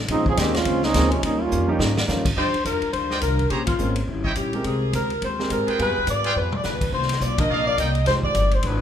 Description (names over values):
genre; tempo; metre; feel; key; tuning
jazz, big band swing; 210 BPM; 4/4; swing 60% on 8ths; Eb major; A4 = 440 Hz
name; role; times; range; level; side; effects
upright bass; bass; 0.0-8.8 s; F1 to Ab2; -25 LUFS; equal; none
bright trombone section; second line; 0.1-2.0 s; C3 to Ab4; -22 LUFS; right 4 dB; none
vintage hollow-body jazz guitar; accompaniment; 0.1-8.8 s; C3 to C#5; -30 LUFS; left 6 dB; none
vintage drum kit; drums; 0.1-8.7 s; crash cymbal, hi-hat, kick drum, ride cymbal, snare drum, toms; -27 LUFS; equal; none
clear grand piano; accompaniment; 0.9-8.5 s; F3 to Bb4; -29 LUFS; right 2 dB; none
dark saxophone section; melody; 2.4-8.8 s; F4 to Eb5; -24 LUFS; left 2 dB; none
bright trumpet section; stabs; 2.4-7.9 s; Eb4 to Bb5; -29 LUFS; right 2 dB; none
room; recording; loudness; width
moderate recital hall reverb, RT60 1.4 s; minimal, uncompressed stereo recording; -19 LUFS; side -9 dB against mid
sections
0.0-2.4 A section; 2.4-8.8 B section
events
trombone section solo 0.0-2.4; drum fill 1.5-2.1, 6.4; band accent 3.6, 7.4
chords
0.1 Bbm9; 1.2 Eb9; 2.4 Ebmaj9; 3.5 Bbm9; 4.1 Eb7b9; 4.6 Abmaj9; 5.8 G7b9; 6.9 Cm11; 8.1 Fm9